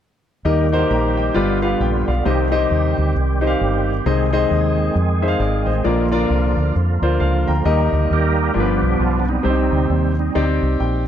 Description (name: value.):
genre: uptempo gospel.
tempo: 133 BPM.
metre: 4/4.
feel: swing 60% on 8ths.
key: Eb major.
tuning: A4 = 440 Hz.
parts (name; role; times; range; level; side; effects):
clear grand piano; accompaniment; 0.4-11.1 s; G2 to Bb5; -20 LUFS; left 2 dB; none.
deep dub fingered electric bass; bass; 0.4-11.1 s; G1 to F2; -19 LUFS; equal; none.
bright tonewheel organ; sustained chords; 0.5-10.5 s; D3 to Bb4; -23 LUFS; right 5 dB; fast rotary speaker, chorus vibrato.
room: light reverb.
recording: dark, warm production.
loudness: -16 LUFS.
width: side -10 dB against mid.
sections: 0.5-7.7 A section; 7.7-11.1 B section.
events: tonewheel organ solo 7.7-11.1; grand piano fill 10.6-11.1.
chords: 0.5 Eb; 1.4 G7; 2.3 Cm; 4.1 Ab/C; 5.9 Bb; 7.7 Eb; 8.6 G7; 9.5 Cm.